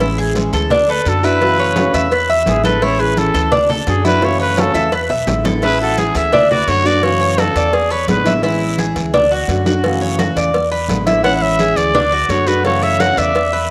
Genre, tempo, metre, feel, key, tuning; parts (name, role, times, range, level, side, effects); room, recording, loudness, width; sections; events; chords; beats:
latin, Cuban son and guajira; 171 BPM; 4/4; straight; A major; A4 = 440 Hz
nylon-string guitar; accompaniment; 0.0-13.4 s; C#3 to F#4; -23 LUFS; equal
Cuban tres; arpeggios; 0.0-13.7 s; D4 to E5; -20 LUFS; equal
upright bass; bass; 0.0-13.7 s; A1 to F#2; -24 LUFS; equal
congas; percussion; 0.0-13.7 s; -25 LUFS; equal
cowbell and bongos; percussion; 0.0-13.5 s; -27 LUFS; equal
guiro; percussion; 0.0-13.7 s; -34 LUFS; equal
growling trumpet; melody; 0.9-8.3, 11.2-13.7 s; G#4 to F#5; -20 LUFS; equal; cassette tape
flamenco guitar; second line; 5.6-8.3, 11.2-13.7 s; E4 to D5; -30 LUFS; equal
light reverb, studio reverb; home recording on cassette; -15 LUFS; mono
0.0-5.6 A section; 5.6-13.7 B section
trumpet solo 0.0-5.6; drum fill 4.2-5.6
0.0 Amaj7; 0.7 D; 1.4 F#m7; 2.1 E7; 2.8 Amaj7; 3.5 D; 4.2 F#m7; 4.9 E7; 5.6 Amaj7; 6.3 D; 7.0 F#m7; 7.7 E7; 8.4 Amaj7; 9.1 D; 9.8 F#m7; 10.5 E7; 11.2 Amaj7; 11.9 D; 12.6 F#m7
| 0.00 0.35 0.70 1.06 | 1.41 1.76 2.11 2.46 | 2.82 3.17 3.52 3.87 | 4.22 4.57 4.92 5.28 | 5.63 5.98 6.33 6.68 | 7.03 7.38 7.74 8.09 | 8.44 8.79 9.14 9.49 | 9.84 10.19 10.54 10.89 | 11.24 11.59 11.95 12.30 | 12.65 13.00 13.35 13.70